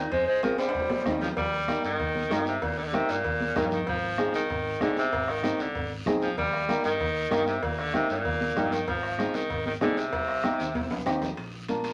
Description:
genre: latin, cumbia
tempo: 192 BPM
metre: 4/4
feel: straight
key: unclear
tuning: A4 = 441 Hz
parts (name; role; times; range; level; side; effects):
- mellow clarinet; melody; 0.0-1.2 s; Eb4 to C5; -29 LUFS; equal; none
- bright tenor saxophone; second line; 0.0-11.1 s; Bb2 to Ab3; -31 LUFS; equal; none
- flamenco guitar; accompaniment; 0.0-11.9 s; Bb3 to Ab4; -32 LUFS; equal; none
- fingered electric bass; bass; 0.0-11.9 s; Ab1 to G2; -41 LUFS; equal; none
- bombo; percussion; 0.1-11.2 s; none; -40 LUFS; equal; none
- guiro; percussion; 0.1-11.9 s; none; -47 LUFS; equal; none
- timbales and cowbell; percussion; 0.1-11.9 s; none; -40 LUFS; equal; none
- congas; percussion; 0.4-11.8 s; none; -38 LUFS; equal; none
room: moderate studio reverb, RT60 0.8 s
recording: none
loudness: -28 LUFS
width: mono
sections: 0.0-1.4 A section; 1.4-11.4 B section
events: drum fill 0.6-1.4, 10.8-11.4; tenor saxophone solo 1.4-11.4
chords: 0.1 Fm; 0.7 Cm; 1.4 Eb; 3.9 Ab; 6.4 Eb; 8.9 Ab; 10.1 Cm; 11.4 Bb

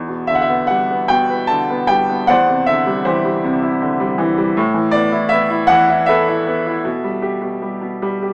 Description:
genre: classical, lyrical solo piano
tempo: 78 BPM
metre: 3/4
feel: rubato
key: E minor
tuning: A4 = 440 Hz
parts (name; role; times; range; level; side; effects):
- bright upright piano; solo; 0.0-8.3 s; E2 to A5; -14 LUFS; equal; none
room: moderate small room reverb, RT60 0.6 s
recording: small speaker sound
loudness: -14 LUFS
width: side -28 dB against mid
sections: 0.0-8.3 A section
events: none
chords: 0.0 Em7; 2.3 Cadd9/E; 4.6 Asus2; 6.9 Em/B

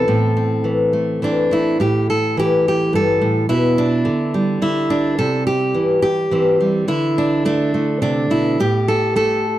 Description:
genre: folk, solo fingerstyle acoustic guitar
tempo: 106 BPM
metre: 3/4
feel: straight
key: A minor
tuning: A4 = 438 Hz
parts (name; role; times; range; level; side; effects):
- fingerpicked steel-string acoustic guitar; solo; 0.0-9.6 s; G2 to A4; -15 LUFS; equal; none
room: studio reverb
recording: dry, close 1970s-style studio recording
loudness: -15 LUFS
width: side -13 dB against mid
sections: 0.0-1.8 A section; 1.8-9.6 A section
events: none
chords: 0.1 Am; 1.8 A5; 3.5 G/B; 5.2 C; 6.9 Dsus2; 8.6 N.C.

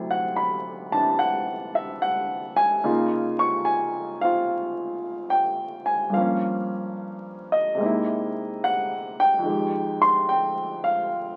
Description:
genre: solo jazz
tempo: 73 BPM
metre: 4/4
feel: swing 68% on 8ths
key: unclear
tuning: A4 = 439 Hz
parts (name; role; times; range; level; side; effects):
- warm grand piano; solo; 0.0-11.4 s; D2 to Db6; -24 LUFS; equal; none
room: moderate studio reverb, RT60 0.8 s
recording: very old 78 rpm record, vinyl crackle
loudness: -24 LUFS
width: mono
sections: 0.0-11.4 A section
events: none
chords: 0.0 D9; 2.8 Db69; 6.1 Gm7b5; 7.8 C7alt; 9.4 Fm9

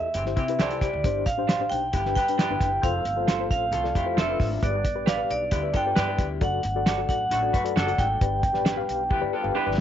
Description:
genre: uptempo 1960s-style soul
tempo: 134 BPM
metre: 4/4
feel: straight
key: unclear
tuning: A4 = 440 Hz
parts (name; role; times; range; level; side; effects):
- vibraphone with medium hard mallets; melody; 0.0-9.7 s; D5 to G5; -26 LUFS; right 2 dB; none
- mellow reed electric piano; accompaniment; 0.0-9.8 s; G2 to F5; -31 LUFS; left 14 dB; fast tremolo
- upright bass; bass; 0.0-9.8 s; F1 to C3; -32 LUFS; equal; none
- edgy saxophone section; second line; 0.1-9.8 s; C3 to A4; -34 LUFS; right 1 dB; none
- cloth-damped thuddy drum kit; drums; 0.1-9.8 s; hi-hat, kick drum, snare drum; -25 LUFS; equal; none
- electric guitar through a small old amp; riff; 0.4-9.8 s; C4 to B4; -34 LUFS; left 13 dB; none
- electric guitar through a small old amp; stabs; 0.6-9.7 s; D4 to D5; -33 LUFS; right 12 dB; none
- percussive tonewheel organ; sustained chords; 2.8-9.8 s; F3 to D4; -39 LUFS; right 1 dB; fast rotary speaker, overdrive, chorus vibrato
room: light reverb, small room ambience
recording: 1960s-style stereo with parts hard left and right, nothing above 7.7 kHz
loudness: -22 LUFS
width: side -10 dB against mid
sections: 0.0-9.8 A section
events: drum fill 9.1-9.8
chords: 0.0 C; 1.9 G; 2.8 F; 4.6 G; 6.4 D/F#; 8.2 G

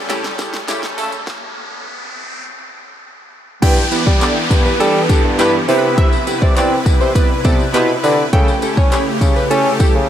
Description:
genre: dance-pop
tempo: 102 BPM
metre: 4/4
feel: straight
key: G major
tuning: A4 = 441 Hz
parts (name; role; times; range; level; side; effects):
- supersaw chords; sustained chords; 0.0-10.1 s; C3 to B4; -22 LUFS; left 1 dB; wide subtle chorus, sidechain pumping
- riser and downlifter; sound effects; 0.0-8.3 s; none; -26 LUFS; equal; none
- chorused polysynth; accompaniment; 0.1-9.9 s; C#3 to D5; -21 LUFS; right 1 dB; sidechain pumping
- pop drum kit; drums; 0.1-9.9 s; crash cymbal, handclaps, hi-hat, kick drum, snare drum; -16 LUFS; equal; none
- tambourine; percussion; 0.1-9.9 s; none; -32 LUFS; left 12 dB; none
- plucky unison lead; melody; 3.6-9.9 s; G4 to G5; -22 LUFS; equal; tape echo
- warm bassoon; bass; 3.6-10.0 s; G2 to C#4; -18 LUFS; equal; sidechain pumping
room: moderate huge ambient reverb, RT60 8.6 s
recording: dreamy mix soaked in reverb, high-pass filter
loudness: -12 LUFS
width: side -10 dB against mid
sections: 0.0-3.6 A section; 3.6-10.1 B section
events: build-up 0.0-3.6; drum fill 0.0-1.3; riser 0.0-3.6; stop 1.3-3.6; drop 3.6-10.1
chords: 0.0 A7/C#; 1.3 N.C.; 3.6 G6; 5.7 Cmaj7; 8.3 A7/C#

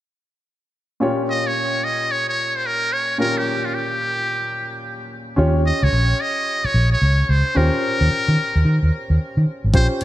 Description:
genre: R&B, new jack swing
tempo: 110 BPM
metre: 4/4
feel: swing 64% on 16ths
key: Bb dorian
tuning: A4 = 440 Hz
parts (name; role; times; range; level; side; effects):
- warm baby grand piano; accompaniment; 1.0-10.0 s; Bb2 to Db5; -25 LUFS; left 1 dB; none
- trumpet with metal mute; melody; 1.3-9.9 s; F4 to Eb5; -22 LUFS; equal; digital delay
- vintage muted fingered electric bass; bass; 5.4-10.0 s; Ab1 to Eb3; -16 LUFS; equal; none
- crisp 8-bit digital drum machine; drums; 9.7-10.0 s; hi-hat, kick drum; -17 LUFS; equal; overdrive
room: light reverb, small room ambience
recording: bright 1980s-style digital production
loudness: -17 LUFS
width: side -14 dB against mid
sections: 1.0-9.7 A section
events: none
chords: 1.0 Bbm6; 5.4 Eb13

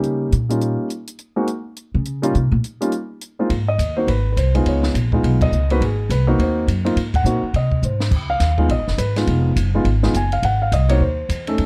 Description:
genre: jazz piano trio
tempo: 208 BPM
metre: 4/4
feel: swing 62% on 8ths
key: Ab mixolydian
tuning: A4 = 440 Hz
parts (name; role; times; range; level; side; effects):
- warm concert grand piano; melody; 0.0-11.7 s; G3 to Ab5; -23 LUFS; equal; none
- upright bass; bass; 0.0-11.7 s; F1 to Db3; -21 LUFS; equal; none
- compact cocktail drum kit; drums; 0.0-11.7 s; crash cymbal, hi-hat, kick drum, ride cymbal, snare drum; -29 LUFS; equal; none
room: little or no reverb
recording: dark, warm production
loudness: -19 LUFS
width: mono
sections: 0.0-3.5 A section; 3.5-11.7 B section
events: upright bass solo 0.0-3.5; band accent 5.4, 7.1; drum fill 7.8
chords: 0.0 Eb9; 1.2 N.C.; 3.5 Ab; 4.7 Db9; 5.8 Ab9; 8.1 Db9; 10.4 Ab7

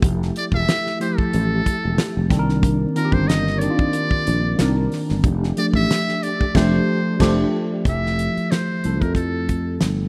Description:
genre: R&B, neo-soul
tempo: 92 BPM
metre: 4/4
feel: swing 55% on 16ths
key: F major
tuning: A4 = 440 Hz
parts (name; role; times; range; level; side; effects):
- tine electric piano; accompaniment; 0.0-10.1 s; Eb3 to Bb4; -25 LUFS; equal; phaser
- mellow tonewheel organ; sustained chords; 0.0-7.8 s; Eb3 to G4; -32 LUFS; equal; none
- sustaining fretless electric bass; bass; 0.0-10.1 s; E1 to F2; -24 LUFS; equal; none
- damped 70s drum kit; drums; 0.0-10.0 s; crash cymbal, hi-hat, kick drum, snare drum; -24 LUFS; equal; none
- trumpet with metal mute; melody; 0.4-9.8 s; A4 to E5; -28 LUFS; equal; none
room: light reverb, studio ambience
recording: rough home demo mix, vinyl crackle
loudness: -20 LUFS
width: mono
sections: 0.0-7.9 A section; 7.9-10.1 B section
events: kick muted 6.5-7.9; band accent 6.5-7.9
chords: 0.0 Fmaj9; 2.3 Cm9; 5.2 F69; 7.9 Fmaj9

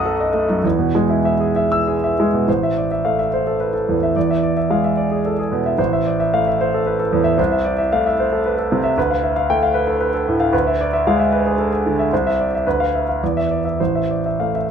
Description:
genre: classical, romantic character piece for solo piano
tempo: 95-116 BPM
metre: 3/4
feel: rubato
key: A minor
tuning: A4 = 440 Hz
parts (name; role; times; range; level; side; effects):
- clear concert grand piano; solo; 0.0-14.7 s; A1 to E6; -16 LUFS; equal; none
room: light reverb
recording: none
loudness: -16 LUFS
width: side -7 dB against mid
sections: 0.0-2.5 A section; 2.5-14.7 B section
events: none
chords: 0.0 B7; 0.6 E; 2.5 Am; 4.2 E7; 5.8 Am; 7.4 Am/C; 9.0 Bm7b5/D; 10.5 E7/D; 12.1 Cadd9; 12.7 Bdim/D; 13.2 Dsus2/E; 13.8 Am

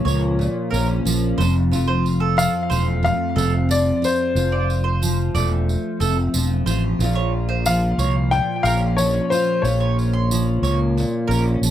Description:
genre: acoustic pop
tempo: 91 BPM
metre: 4/4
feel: straight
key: F major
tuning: A4 = 438 Hz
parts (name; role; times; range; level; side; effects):
- bright upright piano; melody; 0.0-10.9 s; C5 to G5; -23 LUFS; left 3 dB; tape echo
- picked steel-string acoustic guitar; accompaniment; 0.0-11.7 s; F2 to F4; -23 LUFS; equal; double-tracked left and right
- fretless electric bass; bass; 0.0-11.7 s; E1 to Db2; -20 LUFS; equal; none
- mandolin; arpeggios; 0.1-11.4 s; A4 to C6; -26 LUFS; right 7 dB; none
- tambourine; percussion; 0.1-11.7 s; none; -31 LUFS; right 6 dB; none
room: light reverb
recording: none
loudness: -17 LUFS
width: side -11 dB against mid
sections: 0.0-11.7 A section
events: none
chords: 0.0 Bbm; 1.4 F; 7.0 Bbm

